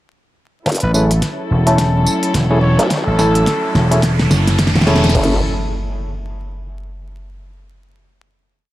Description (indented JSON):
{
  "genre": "glitch hop",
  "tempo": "107 BPM",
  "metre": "4/4",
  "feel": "swing 59% on 16ths",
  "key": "F# minor",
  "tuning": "A4 = 440 Hz",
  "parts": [
    { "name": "dark chamber string section", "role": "sustained chords", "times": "0.7-5.4 s", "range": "F#3 to A4", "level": "-23 LUFS", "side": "equal", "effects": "sidechain pumping, low-pass filter" },
    { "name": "formant-sweep wobble bass", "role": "bass", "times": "0.7-5.4 s", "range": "F#1 to B1", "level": "-17 LUFS", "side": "equal", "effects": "chorus, high-pass filter" },
    { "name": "electronic kick drum", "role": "drums", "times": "0.7-5.3 s", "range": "none", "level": "-23 LUFS", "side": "equal", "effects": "high-pass filter on kick, small room ambience" },
    { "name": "pop drum kit", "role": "drums", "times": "0.7-5.3 s", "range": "crash cymbal, hi-hat, snare drum, tambourine", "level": "-19 LUFS", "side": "equal", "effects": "small room ambience" },
    { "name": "riser and impact", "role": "sound effects", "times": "1.6-7.4 s", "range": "none", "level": "-25 LUFS", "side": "equal", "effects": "none" },
    { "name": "growling trumpet", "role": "melody", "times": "0.8-3.8 s", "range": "A4 to C#5", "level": "-23 LUFS", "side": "equal", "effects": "tape echo" },
    { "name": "vintage slap bass", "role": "bass", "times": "0.8-5.1 s", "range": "E1 to A1", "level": "-14 LUFS", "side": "equal", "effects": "none" },
    { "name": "clav", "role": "stabs", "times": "0.9-5.4 s", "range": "A3 to G#5", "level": "-20 LUFS", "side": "equal", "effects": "sidechain pumping, low-pass filter, tape echo" }
  ],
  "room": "light reverb",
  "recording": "dry, gritty hardware recording, transformer saturation, vinyl crackle",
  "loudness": "-12 LUFS",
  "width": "side -15 dB against mid",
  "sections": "0.7-5.2 build; 5.2-7.4 final chord",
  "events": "build-up 0.7-5.2; drum fill 0.7-5.2; filter sweep on clav 0.7-5.2; filter sweep on string section 0.7-5.2; riser 1.6-5.2",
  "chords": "0.7 F#m7",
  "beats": "| 0.67 1.23 1.79 2.35 | 2.91 3.47 4.03 4.59 | 5.15 5.71 6.27 6.83"
}